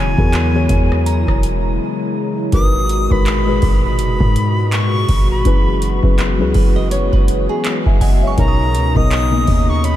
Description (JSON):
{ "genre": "contemporary R&B", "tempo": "82 BPM", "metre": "4/4", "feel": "swing 58% on 16ths", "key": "G# minor", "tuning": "A4 = 441 Hz", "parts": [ { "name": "breathy bright jazz flute", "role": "melody", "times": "0.0-10.0 s", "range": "G#5 to D#6", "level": "-24 LUFS", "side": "equal", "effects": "analog delay" }, { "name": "muted felt-like synth keys", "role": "accompaniment", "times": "0.0-10.0 s", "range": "B2 to G#5", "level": "-20 LUFS", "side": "left 3 dB", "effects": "chorus" }, { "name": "hollow soft pad", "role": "sustained chords", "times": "0.0-10.0 s", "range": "A#2 to F#4", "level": "-23 LUFS", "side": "left 1 dB", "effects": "chorus" }, { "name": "warm 808-style bass", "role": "bass", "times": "0.0-10.0 s", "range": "E1 to G#2", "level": "-18 LUFS", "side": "equal", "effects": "none" }, { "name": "booming analog drum machine", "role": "drums", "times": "0.2-10.0 s", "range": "handclaps, hi-hat, kick drum, rim click", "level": "-17 LUFS", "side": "equal", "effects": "none" }, { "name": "glassy synth bell", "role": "texture", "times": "1.1-2.9, 8.0-10.0 s", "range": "C#5 to D#6", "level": "-31 LUFS", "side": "right 4 dB", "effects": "chorus, analog delay" }, { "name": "flamenco guitar", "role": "arpeggios", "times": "6.5-8.3 s", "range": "G#4 to D#5", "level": "-25 LUFS", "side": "right 2 dB", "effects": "analog delay" } ], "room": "light reverb, digital ambience", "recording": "none", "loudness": "-13 LUFS", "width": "side -13 dB against mid", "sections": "0.0-10.0 A section", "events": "break 1.8-2.5", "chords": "0.0 E69; 2.5 G#m9; 5.5 F#9sus4; 8.4 Bmaj9" }